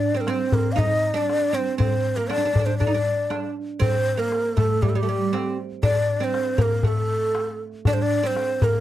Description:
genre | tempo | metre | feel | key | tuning
Arabic maqam ensemble | 119 BPM | 4/4 | straight | unclear | A4 = 439 Hz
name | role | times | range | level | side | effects
breathy low ney | melody | 0.0-8.8 s | G4 to F5 | -24 LUFS | equal | none
oud | second line | 0.0-8.8 s | G3 to Eb4 | -27 LUFS | right 6 dB | none
darbuka | percussion | 0.3-8.7 s | none | -23 LUFS | left 2 dB | none
room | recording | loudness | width
little or no reverb | dry, close 1970s-style studio recording | -20 LUFS | side -13 dB against mid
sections
0.0-8.8 A section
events
none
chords
none

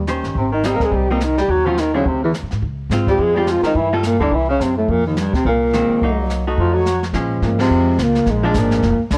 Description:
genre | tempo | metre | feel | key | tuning
jazz, small-group swing and bop | 212 BPM | 4/4 | swing 59% on 8ths | F minor | A4 = 437 Hz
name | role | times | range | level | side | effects
breathy tenor saxophone | melody | 0.0-9.2 s | Eb3 to Bb4 | -20 LUFS | equal | none
warm baritone saxophone | second line | 0.0-9.2 s | Eb2 to Bb3 | -26 LUFS | equal | none
upright bass | bass | 0.0-9.2 s | F1 to Bb2 | -24 LUFS | equal | transformer saturation
archtop guitar, miked and amplified | accompaniment | 0.1-8.8 s | D3 to C5 | -24 LUFS | equal | none
jazz brush drum kit | drums | 0.1-9.2 s | brushed snare drum, hi-hat, kick drum, ride cymbal, snare drum | -28 LUFS | equal | none
room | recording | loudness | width
light reverb | worn, warbling old tape, cassette tape, warbly pitch drift | -17 LUFS | mono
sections
0.0-7.1 A section; 7.1-9.2 B section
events
band accent 7.6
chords
0.4 Abmaj7; 1.5 Ebm9; 2.1 D; 2.6 Dbmaj7; 3.8 Gm9; 4.3 Am6/C; 4.9 Fm7; 6.0 Cm7b5; 6.6 F7b9; 7.1 Bbm7; 8.3 Bb7

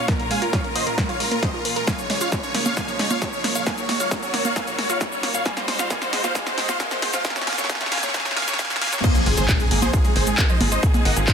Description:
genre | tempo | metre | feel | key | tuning
uplifting trance | 134 BPM | 4/4 | straight | unclear | A4 = 442 Hz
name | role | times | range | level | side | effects
big supersaw lead | melody | 0.0-11.3 s | Ab4 to Ab5 | -25 LUFS | right 1 dB | phaser, cassette tape, sidechain pumping, tape echo
clear studio string section | sustained chords | 0.0-11.3 s | Eb2 to Gb4 | -31 LUFS | left 3 dB | sidechain pumping
wide unison pluck | arpeggios | 0.0-11.3 s | Bb2 to Bb4 | -30 LUFS | right 6 dB | sidechain pumping, dub echo
riser and impact | sound effects | 0.0-10.8 s | none | -30 LUFS | left 1 dB | none
electronic kick drum | drums | 0.1-11.3 s | none | -23 LUFS | equal | distortion, overdrive
punchy analog drum machine | drums | 0.1-11.3 s | congas, crash cymbal, handclaps, hi-hat, shaker, snare drum | -25 LUFS | equal | sidechain pumping on hats, sidechain pumping on perc, sidechain pumping on cymbals
tight sequencer bass | bass | 9.3-11.3 s | Ab1 | -23 LUFS | equal | sidechain pumping
room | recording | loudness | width
light reverb, digital ambience | dense, heavily limited modern master, high-pass filter | -19 LUFS | side -7 dB against mid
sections
0.0-9.0 A section; 9.0-11.3 B section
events
build-up 0.0-9.0; drum fill 0.0-9.0; riser 0.0-9.0; filter sweep on synth arpeggio sound 0.0-9.0; filter sweep 0.0-9.0; drop 9.0-11.3; impact 9.0-10.8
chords
0.0 Bbm; 1.9 Dbadd9; 3.7 Ebm; 5.5 Cdim; 7.2 Bbm; 9.0 Ab

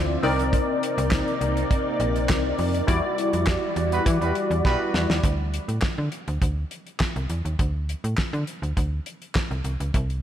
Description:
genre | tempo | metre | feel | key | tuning
early-eighties boogie funk | 102 BPM | 4/4 | straight | unclear | A4 = 441 Hz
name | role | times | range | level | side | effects
funky polysynth comp | accompaniment | 0.0-5.2 s | G3 to D5 | -25 LUFS | left 2 dB | chorus
soft string machine | sustained chords | 0.0-5.2 s | C3 to E5 | -32 LUFS | right 1 dB | phaser, ensemble chorus
slap-like FM bass | bass | 0.0-10.2 s | Bb1 to E3 | -26 LUFS | equal | none
damped 70s drum kit | drums | 0.2-10.2 s | handclaps, hi-hat, kick drum, snare drum | -26 LUFS | equal | none
warm horn section | second line | 3.9-5.1 s | G3 to B4 | -29 LUFS | right 2 dB | none
room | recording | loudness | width
moderate church reverb, RT60 2.9 s | dreamy mix soaked in reverb | -22 LUFS | side -10 dB against mid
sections
0.0-5.2 A section; 5.2-10.2 B section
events
band accent 2.9-5.2; drum fill 4.6-5.2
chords
0.2 Cm9; 2.9 Em9; 5.2 N.C.

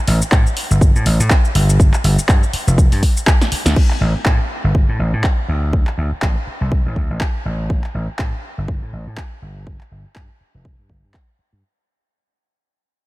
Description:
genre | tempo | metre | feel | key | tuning
filtered disco house | 122 BPM | 4/4 | swing 57% on 16ths | unclear | A4 = 438 Hz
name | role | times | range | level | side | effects
vintage slap bass | bass | 0.1-11.6 s | F1 to A2 | -17 LUFS | equal | sidechain pumping, low-pass filter
punchy analog drum machine | drums | 0.1-11.3 s | crash cymbal, handclaps, hi-hat, shaker, snare drum | -22 LUFS | equal | sidechain pumping on perc, sidechain pumping on hats, sidechain pumping on cymbals
electronic kick drum | drums | 0.3-11.3 s | none | -15 LUFS | equal | none
room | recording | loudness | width
little or no reverb | none | -14 LUFS | side -19 dB against mid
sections
0.0-3.8 A section; 3.8-11.6 B section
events
drop 0.0-3.8; drum fill 3.4-3.8; fade-out 3.8-11.6; filter sweep on slap bass 3.8-11.6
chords
none

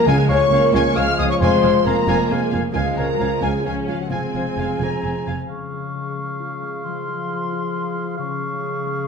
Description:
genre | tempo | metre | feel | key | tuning
cinematic | 134 BPM | 3/4 | straight | Db major | A4 = 440 Hz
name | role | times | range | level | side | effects
clear oboe | second line | 0.0-9.1 s | F5 to Ab5 | -32 LUFS | right 2 dB | none
mellow hollow silver concert flute | second line | 0.0-9.1 s | F5 to F6 | -28 LUFS | left 2 dB | none
warm clarinet | second line | 0.0-9.1 s | Ab4 to Bb5 | -32 LUFS | right 2 dB | none
warm symphonic violin section | second line | 0.0-5.2 s | F5 to F6 | -29 LUFS | left 2 dB | none
warm symphonic viola section | accompaniment | 0.0-5.2 s | F3 to Db4 | -25 LUFS | right 2 dB | none
clear trombone section | sustained chords | 0.0-5.2 s | F3 to Ab3 | -28 LUFS | right 4 dB | none
mellow French horn section | sustained chords | 0.0-9.1 s | Db3 to F5 | -23 LUFS | left 3 dB | none
concert harp | arpeggios | 0.0-9.1 s | Db3 to Ab4 | -30 LUFS | left 8 dB | none
warm studio violin section | melody | 0.1-5.3 s | C5 to Ab5 | -30 LUFS | left 3 dB | none
warm symphonic cello section | bass | 0.1-5.3 s | Db2 to F2 | -26 LUFS | right 2 dB | none
warm symphonic double bass section | bass | 0.1-5.4 s | F1 to Db2 | -26 LUFS | right 3 dB | none
timpani | percussion | 0.1-0.7 s | Db3 | -23 LUFS | equal | none
room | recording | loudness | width
wet recital hall reverb, RT60 1.4 s | none | -18 LUFS | side -6 dB against mid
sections
0.0-5.5 A section; 5.5-9.1 B section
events
none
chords
0.1 Db; 1.4 Fm; 2.7 Db; 4.1 Fm; 5.5 Db; 6.9 Fm; 8.2 Db

